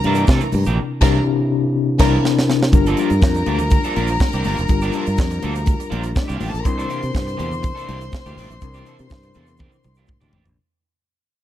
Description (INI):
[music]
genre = disco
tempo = 122 BPM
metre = 4/4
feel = straight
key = unclear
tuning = A4 = 438 Hz
[part]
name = warm studio violin section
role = second line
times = 0.0-10.3 s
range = D4 to C6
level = -27 LUFS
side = left 2 dB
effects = none
[part]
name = mellow tine electric piano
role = accompaniment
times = 0.0-10.6 s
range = C3 to Bb4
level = -21 LUFS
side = left 4 dB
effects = medium stereo tremolo
[part]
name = tight funk drum kit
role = drums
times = 0.0-10.6 s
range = crash cymbal, hi-hat, kick drum, snare drum, toms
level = -17 LUFS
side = right 1 dB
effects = none
[part]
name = congas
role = percussion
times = 0.0-10.5 s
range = none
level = -32 LUFS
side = left 3 dB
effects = none
[part]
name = electric guitar at the edge of break-up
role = accompaniment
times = 0.1-10.5 s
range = E3 to A4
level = -28 LUFS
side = right 6 dB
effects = analog chorus
[part]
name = fingered electric bass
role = bass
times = 0.1-10.6 s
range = F1 to C3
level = -22 LUFS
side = equal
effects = none
[part]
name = egg shaker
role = percussion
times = 0.1-10.6 s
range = none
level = -46 LUFS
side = right 8 dB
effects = none
[sound]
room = studio ambience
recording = dark, warm production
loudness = -16 LUFS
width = side -12 dB against mid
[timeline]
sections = 0.0-2.7 A section; 2.7-10.6 B section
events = band accent 0.8-2.7; drum fill 1.8-2.7, 9.6-10.6; fade-out 2.7-10.6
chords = 0.0 C9; 2.7 Gm7; 6.7 C9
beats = 0.28 | 0.77 1.26 1.75 2.24 | 2.73 3.22 3.71 4.20 | 4.69 5.18 5.67 6.16 | 6.65 7.14 7.63 8.12 | 8.61 9.10 9.60 10.09